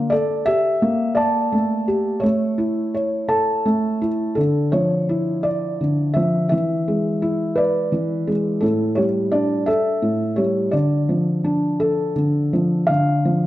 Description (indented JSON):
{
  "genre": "children's music, lullaby",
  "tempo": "56 BPM (dotted quarters)",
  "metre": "6/8",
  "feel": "straight",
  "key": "D harmonic minor",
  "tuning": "A4 = 440 Hz",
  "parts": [
    { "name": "felt-muted upright piano", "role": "solo", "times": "0.0-13.5 s", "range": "A2 to A5", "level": "-18 LUFS", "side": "equal", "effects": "none" }
  ],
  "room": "moderate recital hall reverb, RT60 1.6 s",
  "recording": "dark, warm production",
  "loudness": "-18 LUFS",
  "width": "side -14 dB against mid",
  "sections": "0.0-12.9 A section",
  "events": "none",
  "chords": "0.1 Gmadd9; 2.2 A; 4.4 Dmadd9; 6.5 E7; 8.6 A7sus4; 9.7 A5; 10.7 Dm",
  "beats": "| 0.11 1.16 | 2.22 3.29 | 4.37 5.45 | 6.51 7.57 | 8.62 9.68 | 10.73 11.80 | 12.88"
}